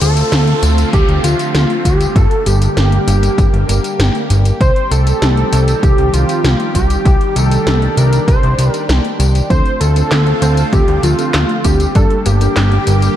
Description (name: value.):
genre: synthwave.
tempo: 98 BPM.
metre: 4/4.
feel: straight.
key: G minor.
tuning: A4 = 440 Hz.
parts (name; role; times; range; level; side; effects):
wide unison lead; melody; 0.0-13.2 s; F4 to C5; -19 LUFS; equal; tape echo.
soft synth bell; second line; 0.0-13.2 s; F4 to C5; -24 LUFS; right 1 dB; none.
lush unison pad; sustained chords; 0.0-13.2 s; D3 to G4; -20 LUFS; equal; chorus, phaser, sidechain pumping.
fat analog bass; bass; 0.0-13.1 s; G1 to D2; -13 LUFS; equal; sidechain pumping.
80s electronic pad drums; drums; 0.0-13.1 s; handclaps, hi-hat, snare drum, tambourine; -20 LUFS; left 1 dB; overdrive.
downlifter; sound effects; 0.0-4.6 s; none; -27 LUFS; left 1 dB; none.
electronic kick drum; drums; 0.9-12.1 s; none; -13 LUFS; equal; overdrive.
wide unison pluck; arpeggios; 9.5-12.8 s; F3 to D4; -26 LUFS; left 1 dB; none.
mellow FM electric piano; stabs; 9.5-13.1 s; G3 to D5; -22 LUFS; right 2 dB; chorus.
room: light reverb.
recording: dark, warm production.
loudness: -10 LUFS.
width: side -11 dB against mid.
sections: 0.0-13.2 A section.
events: none.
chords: 0.0 Dm7; 2.2 Gm; 4.6 Cm; 9.5 Dm7; 12.0 Gm.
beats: 0.32 0.93 1.54 | 2.16 2.77 3.38 3.99 | 4.61 5.22 5.83 6.44 | 7.05 7.67 8.28 8.89 | 9.50 10.12 10.73 11.34 | 11.95 12.56.